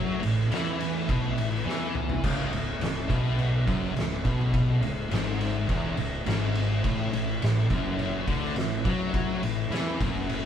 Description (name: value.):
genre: stoner and doom metal.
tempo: 104 BPM.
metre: 4/4.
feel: straight.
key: unclear.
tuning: A4 = 440 Hz.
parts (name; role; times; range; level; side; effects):
soft string machine; sustained chords; 0.0-10.5 s; C#3 to B4; -43 LUFS; equal; none.
distorted electric guitar; riff; 0.0-10.5 s; C#2 to F#3; -34 LUFS; equal; overdrive.
thick fuzz guitar; riff; 0.0-10.5 s; C#2 to F#3; -31 LUFS; left 5 dB; distortion.
thick fuzz guitar; riff; 0.0-10.5 s; C#2 to F#3; -31 LUFS; right 5 dB; distortion.
fuzz fingered electric bass; bass; 0.0-10.5 s; C#1 to F#2; -34 LUFS; equal; overdrive.
oversized low-tuned drum kit; drums; 0.2-10.4 s; crash cymbal, kick drum, ride cymbal, snare drum, toms; -29 LUFS; equal; none.
room: light reverb.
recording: band playing live in one room.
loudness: -24 LUFS.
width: side -9 dB against mid.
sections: 0.0-10.5 A section.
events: drum fill 1.7-2.2.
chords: 0.0 A5; 2.2 C#m; 6.8 A5.